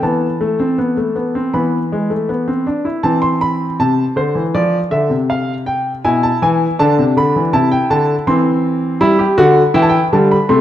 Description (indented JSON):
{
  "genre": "classical, baroque-style 3-part fugue for grand piano",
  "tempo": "80 BPM",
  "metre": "4/4",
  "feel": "straight",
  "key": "unclear",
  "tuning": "A4 = 438 Hz",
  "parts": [
    { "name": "clear baby grand piano", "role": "solo", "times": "0.0-10.6 s", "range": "B2 to C6", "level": "-12 LUFS", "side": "equal", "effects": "none" }
  ],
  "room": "wet recital hall reverb, RT60 1.5 s",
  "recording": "dark, warm production",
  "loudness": "-13 LUFS",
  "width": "side -12 dB against mid",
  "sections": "0.0-3.0 A section; 3.0-10.6 B section",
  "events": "none",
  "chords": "0.0 Esus4; 1.5 E5; 3.0 Am/E; 4.6 Dm; 6.0 E7/B; 7.5 Am/C; 9.0 Em",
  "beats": "| 0.02 0.77 1.53 2.29 | 3.05 3.80 4.55 5.30 | 6.04 6.79 7.54 8.27 | 9.01 9.75 10.49"
}